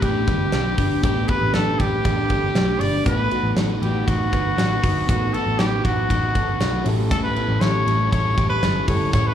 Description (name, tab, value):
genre	jangly indie pop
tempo	119 BPM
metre	4/4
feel	straight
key	unclear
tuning	A4 = 439 Hz
part	clear trumpet	melody	0.0-9.3 s	F#4 to D5	-24 LUFS	equal	plate reverb, slapback echo, ping-pong delay
part	crunchy overdriven guitar	accompaniment	0.0-9.3 s	A2 to B4	-30 LUFS	right 7 dB	slapback echo
part	reed electric piano	accompaniment	0.0-9.3 s	A3 to B4	-32 LUFS	left 2 dB	none
part	twelve-string electric guitar	arpeggios	0.0-9.3 s	A2 to B4	-26 LUFS	left 4 dB	slapback echo
part	vintage muted picked electric bass	bass	0.0-9.3 s	G1 to B1	-23 LUFS	equal	none
part	big rock drum kit	drums	0.0-9.3 s	hi-hat, kick drum, ride cymbal, snare drum	-24 LUFS	equal	none
room	light reverb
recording	live gig heard through the venue's PA, club reverb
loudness	-18 LUFS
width	side -10 dB against mid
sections	0.0-9.3 A section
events	none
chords	0.0 G; 3.1 B; 6.9 A7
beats	0.02 0.53 | 1.04 1.54 2.05 2.55 | 3.06 3.57 4.07 4.58 | 5.08 5.59 6.10 6.60 | 7.11 7.61 8.12 8.63 | 9.13